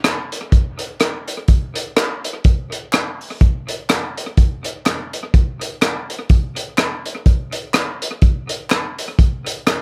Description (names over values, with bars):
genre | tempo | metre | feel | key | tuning
ska | 125 BPM | 4/4 | swing 57% on 8ths | none | none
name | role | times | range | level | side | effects
crunchy breakbeat drum kit | drums | 0.0-9.8 s | hi-hat, kick drum, rim click | -18 LUFS | equal | none
group handclap | percussion | 0.1-9.8 s | none | -27 LUFS | equal | none
room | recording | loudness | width
light reverb | none | -19 LUFS | mono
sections
0.0-9.8 A section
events
none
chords
none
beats
0.04 0.52 1.00 | 1.49 1.97 2.45 2.93 | 3.41 3.89 4.38 4.86 | 5.34 5.82 6.30 6.78 | 7.26 7.75 8.23 8.71 | 9.19 9.67